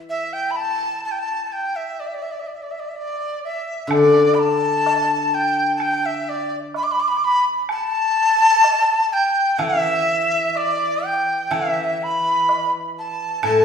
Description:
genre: chinese traditional, Chinese chamber ensemble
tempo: 63 BPM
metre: 2/4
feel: straight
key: unclear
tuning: A4 = 440 Hz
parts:
  - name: steel-string zither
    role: accompaniment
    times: 0.0-1.0, 3.9-6.7, 9.6-13.6 s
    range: A2 to E3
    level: -20 LUFS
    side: left 2 dB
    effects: none
  - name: breathy dizi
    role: melody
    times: 0.1-13.6 s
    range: D5 to D6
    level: -19 LUFS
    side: equal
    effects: none
  - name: woodblock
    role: percussion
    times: 3.9-13.6 s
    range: none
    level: -29 LUFS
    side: right 3 dB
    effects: none
room: wet recital hall reverb, RT60 1.3 s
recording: heard from further back in the room, small room ambience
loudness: -17 LUFS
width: side -7 dB against mid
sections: 0.0-3.9 A section; 3.9-13.6 B section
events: none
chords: none

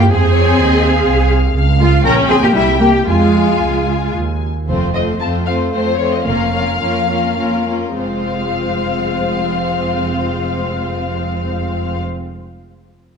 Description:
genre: quick classical-period movement for string orchestra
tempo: 96-126 BPM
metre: 3/4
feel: rubato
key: F minor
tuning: A4 = 439 Hz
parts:
  - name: dark studio violin section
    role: melody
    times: 0.0-12.0 s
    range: C5 to A5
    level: -22 LUFS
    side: left 5 dB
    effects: none
  - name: warm symphonic violin section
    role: second line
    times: 0.0-12.0 s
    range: F4 to Bb5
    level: -22 LUFS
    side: left 6 dB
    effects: none
  - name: warm studio viola section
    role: accompaniment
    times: 0.0-12.0 s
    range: G3 to Db4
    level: -19 LUFS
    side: equal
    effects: none
  - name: rich studio double bass section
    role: bass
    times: 0.0-12.0 s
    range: F1 to G2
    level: -18 LUFS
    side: right 2 dB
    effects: none
  - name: warm studio cello section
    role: bass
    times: 0.0-12.0 s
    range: F2 to Bb4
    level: -20 LUFS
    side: right 3 dB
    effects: none
room: wet recital hall reverb, RT60 1.8 s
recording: dark, warm production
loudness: -13 LUFS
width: side -6 dB against mid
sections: 0.0-4.7 A section; 4.7-8.0 B section; 8.0-11.6 C section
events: slowing down 3.9-8.0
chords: 0.1 Fm; 1.6 Db; 2.0 Gdim/Bb; 2.6 C; 3.1 Fm; 4.7 F; 6.2 Bbm/F; 8.0 Fm

